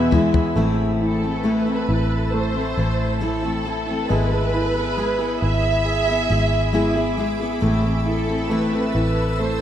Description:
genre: pop ballad.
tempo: 68 BPM.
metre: 4/4.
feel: straight.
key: A minor.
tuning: A4 = 440 Hz.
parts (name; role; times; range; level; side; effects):
rich studio violin section; melody; 0.0-9.6 s; A4 to E5; -25 LUFS; right 2 dB; none.
clear concert grand piano; accompaniment; 0.0-9.6 s; E3 to G#4; -26 LUFS; right 1 dB; none.
shimmering ambient pad; sustained chords; 0.0-9.6 s; G#4 to E6; -30 LUFS; equal; chorus, built-in reverb.
picked steel-string acoustic guitar; arpeggios; 0.0-9.6 s; E2 to G#4; -24 LUFS; left 2 dB; none.
vintage muted fingered electric bass; bass; 0.0-9.6 s; G#1 to E2; -24 LUFS; equal; none.
toms; drums; 0.1-0.5 s; none; -21 LUFS; left 2 dB; none.
room: moderate lush hall reverb, RT60 2.8 s.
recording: rough home demo mix.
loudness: -18 LUFS.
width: side -10 dB against mid.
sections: 0.6-9.6 A section.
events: drum fill 0.0-0.6.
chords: 0.0 E; 0.6 Am; 4.1 E/G#; 7.6 Am.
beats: | 0.56 1.45 2.33 3.21 | 4.09 4.98 5.86 6.74 | 7.62 8.51 9.39.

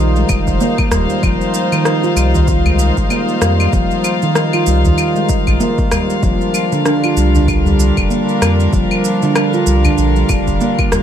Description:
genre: organic downtempo.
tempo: 96 BPM.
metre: 4/4.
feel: swing 58% on 16ths.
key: F dorian.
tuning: A4 = 440 Hz.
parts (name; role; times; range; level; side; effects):
rich chamber string section; sustained chords; 0.0-11.0 s; G3 to F5; -20 LUFS; left 1 dB; sidechain pumping.
warm sub bass; bass; 0.0-11.0 s; Eb1 to F2; -15 LUFS; equal; sidechain pumping.
handpan; arpeggios; 0.2-11.0 s; D3 to F4; -16 LUFS; right 1 dB; vintage 12-bit sampler grit, ping-pong delay.
electronic shaker, claves and rim click; drums; 0.2-11.0 s; none; -21 LUFS; left 1 dB; overdrive.
electronic kick drum; drums; 0.3-10.9 s; none; -18 LUFS; equal; overdrive.
udu; percussion; 0.9-11.0 s; none; -20 LUFS; equal; none.
room: light reverb, small room ambience.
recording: none.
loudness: -12 LUFS.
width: side -9 dB against mid.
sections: 0.0-11.0 A section.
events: none.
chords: 0.0 Fm7; 6.2 Gm7/F.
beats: 0.61 | 1.23 1.86 2.48 3.11 | 3.73 4.36 4.98 5.61 | 6.23 6.86 7.48 8.11 | 8.73 9.36 9.98 10.61.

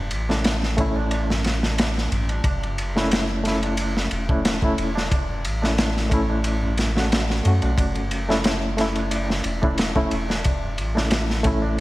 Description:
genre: trip hop.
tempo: 90 BPM.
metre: 4/4.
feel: swing 53% on 16ths.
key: F# minor.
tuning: A4 = 439 Hz.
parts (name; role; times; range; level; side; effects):
soft dub sub bass; bass; 0.0-11.8 s; E1 to F#2; -25 LUFS; equal; none.
crunchy breakbeat drum kit; drums; 0.1-11.6 s; kick drum, ride cymbal, snare drum; -23 LUFS; equal; gated reverb.
barky reed electric piano; accompaniment; 0.3-11.8 s; A3 to F#4; -25 LUFS; equal; overdrive, tremolo, tape echo.
tabla; percussion; 0.3-11.7 s; none; -33 LUFS; right 1 dB; none.
room: light reverb, studio reverb.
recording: bright 1980s-style digital production, vinyl crackle.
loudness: -20 LUFS.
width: side -18 dB against mid.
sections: 0.0-11.8 A section.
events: none.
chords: 0.0 F#m7 (rootless); 2.4 A; 7.8 F#m7.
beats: 0.45 1.11 1.78 | 2.44 3.11 3.78 4.45 | 5.11 5.78 6.45 7.11 | 7.78 8.45 9.11 9.78 | 10.45 11.11 11.78.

